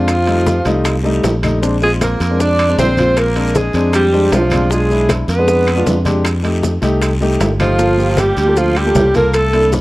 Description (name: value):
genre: Afro-Cuban jazz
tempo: 156 BPM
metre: 4/4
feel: straight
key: unclear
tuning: A4 = 440 Hz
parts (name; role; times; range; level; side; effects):
- breathy alto saxophone; melody; 0.0-9.7 s; F4 to D5; -17 LUFS; equal; none
- breathy tenor saxophone; second line; 0.0-9.7 s; F3 to D4; -19 LUFS; right 3 dB; none
- warm upright piano; accompaniment; 0.0-9.8 s; G3 to A4; -18 LUFS; left 1 dB; none
- fingered electric bass; bass; 0.0-9.8 s; G1 to F2; -17 LUFS; equal; none
- bongos; percussion; 0.1-9.8 s; none; -23 LUFS; left 4 dB; none
- claves; percussion; 0.1-9.5 s; none; -29 LUFS; left 4 dB; none
- congas; percussion; 0.1-9.8 s; none; -23 LUFS; left 1 dB; none
- guiro; percussion; 0.1-9.8 s; none; -32 LUFS; left 3 dB; none
- maracas; percussion; 0.1-9.8 s; none; -32 LUFS; right 4 dB; none
- timbales; percussion; 0.1-9.8 s; none; -24 LUFS; right 3 dB; none
room: small room ambience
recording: dry, close 1970s-style studio recording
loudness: -12 LUFS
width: side -18 dB against mid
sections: 0.0-9.8 A section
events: none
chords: 0.1 F7; 1.6 Bb7; 4.7 Bdim7; 6.3 F7; 7.8 Gm7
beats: | 0.08 0.47 0.85 1.24 | 1.63 2.01 2.40 2.78 | 3.17 3.55 3.94 4.32 | 4.71 5.09 5.48 5.87 | 6.25 6.64 7.02 7.41 | 7.79 8.18 8.56 8.95 | 9.34 9.72